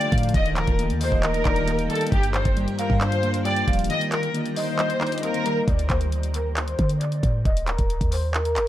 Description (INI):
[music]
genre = hip hop, trap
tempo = 135 BPM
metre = 4/4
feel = half-time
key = unclear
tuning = A4 = 442 Hz
[part]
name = warm studio violin section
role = melody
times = 0.0-8.7 s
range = G4 to Eb5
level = -27 LUFS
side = left 1 dB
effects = low-pass filter, dub echo
[part]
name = warm velvety synth lead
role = second line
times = 0.0-5.7 s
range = Bb4 to G5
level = -32 LUFS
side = right 2 dB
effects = chorus, tremolo, dub echo
[part]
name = mellow tine electric piano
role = accompaniment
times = 0.0-5.7 s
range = G2 to Eb5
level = -28 LUFS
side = left 3 dB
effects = dub echo
[part]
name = granular cloud pad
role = sustained chords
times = 0.0-5.7 s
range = D3 to G4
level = -33 LUFS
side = right 2 dB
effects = built-in reverb
[part]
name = clean 808-style bass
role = bass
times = 0.0-8.7 s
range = Eb1 to D3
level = -25 LUFS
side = equal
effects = none
[part]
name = trap drum kit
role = drums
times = 0.0-8.7 s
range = handclaps, hi-hat, kick drum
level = -25 LUFS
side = equal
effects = none
[sound]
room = little or no reverb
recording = echo-heavy mix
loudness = -20 LUFS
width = side -13 dB against mid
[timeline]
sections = 0.0-5.7 A section; 5.7-8.7 B section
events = break 3.9-5.7; filter sweep on violin section 5.7-8.7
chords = 0.3 Eb; 2.1 Gm7; 3.9 Eb; 5.7 D5; 7.5 Eb5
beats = | 0.34 0.79 1.23 1.68 | 2.12 2.57 3.01 3.45 | 3.90 4.34 4.79 5.23 | 5.68 6.12 6.57 7.01 | 7.45 7.90 8.34